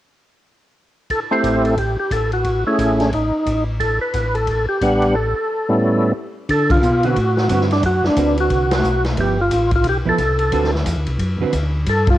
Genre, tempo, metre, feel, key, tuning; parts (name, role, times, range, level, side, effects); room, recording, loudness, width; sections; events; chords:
soul jazz organ trio; 178 BPM; 4/4; swing 62% on 8ths; D mixolydian; A4 = 440 Hz
percussive tonewheel organ; melody; 1.1-12.2 s; A2 to F#5; -17 LUFS; equal; slow rotary speaker, overdrive, chorus vibrato, cassette tape
swinging big-band drum kit; drums; 1.1-12.1 s; hi-hat, kick drum, ride cymbal, snare drum; -24 LUFS; left 1 dB; cassette tape
mellow tonewheel organ; bass; 1.4-12.2 s; G1 to D3; -20 LUFS; equal; slow rotary speaker
hollow-body jazz guitar; accompaniment; 7.0-11.5 s; D3 to B4; -23 LUFS; right 6 dB; cassette tape
light reverb, studio reverb; home recording on cassette; -16 LUFS; side -14 dB against mid
1.1-6.5 A section; 6.5-12.2 B section
band accent 6.7, 8.7
1.1 Am7; 3.1 N.C.; 3.8 A13sus4; 6.5 D6; 9.2 G13; 10.5 D13